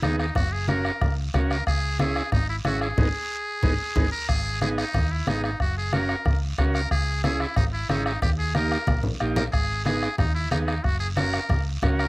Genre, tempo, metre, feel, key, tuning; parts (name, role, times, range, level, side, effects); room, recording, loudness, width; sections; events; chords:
latin, cumbia; 183 BPM; 4/4; straight; G# minor; A4 = 441 Hz
trumpet with metal mute; melody; 0.0-12.1 s; D#4 to A#4; -29 LUFS; equal; cassette tape
combo organ; accompaniment; 0.0-12.1 s; A#3 to A#4; -28 LUFS; right 2 dB; cassette tape
hollow-body short-scale fingered electric bass; bass; 0.0-12.1 s; F#1 to D#2; -28 LUFS; equal
bombo; percussion; 0.0-12.1 s; -26 LUFS; equal
congas; percussion; 0.0-12.0 s; -28 LUFS; left 1 dB
guiro; percussion; 0.0-12.1 s; -40 LUFS; right 4 dB
light reverb; home recording on cassette; -22 LUFS; side -23 dB against mid
0.0-4.3 A section; 4.3-12.1 A section
band accent 3.0-4.3; drum fill 3.5-4.3, 8.9-9.5
0.4 F#; 1.7 C#m; 3.0 G#m; 5.6 F#; 6.9 C#m; 8.2 D#; 9.5 G#m; 10.8 F#